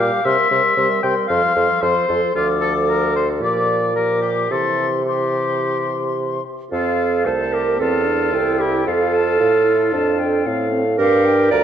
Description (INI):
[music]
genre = quick classical-period movement for wind quintet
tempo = 113 BPM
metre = 4/4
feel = rubato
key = F major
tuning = A4 = 440 Hz
[part]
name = silver concert flute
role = melody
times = 0.0-11.6 s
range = F5 to D6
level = -25 LUFS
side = left 9 dB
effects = none
[part]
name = warm oboe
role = second line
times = 0.0-11.6 s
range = E4 to G5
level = -22 LUFS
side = left 4 dB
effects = none
[part]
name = bright clarinet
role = accompaniment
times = 0.0-11.6 s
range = G4 to D5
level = -22 LUFS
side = right 5 dB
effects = none
[part]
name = mellow French horn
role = accompaniment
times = 0.0-11.6 s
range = E3 to F4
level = -27 LUFS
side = right 1 dB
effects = none
[part]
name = dark bassoon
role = bass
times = 0.0-11.6 s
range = C2 to C3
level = -20 LUFS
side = right 1 dB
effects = none
[sound]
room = moderate concert hall reverb, RT60 2.1 s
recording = worn, warbling old tape, cassette tape, warbly pitch drift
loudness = -16 LUFS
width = side -9 dB against mid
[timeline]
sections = 0.0-6.7 A section; 6.7-11.6 B section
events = none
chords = 0.2 C7; 1.3 F; 2.3 Dm; 3.4 Gm7/Bb; 4.5 C; 6.7 F; 7.8 C/E; 8.9 F; 11.0 Gm7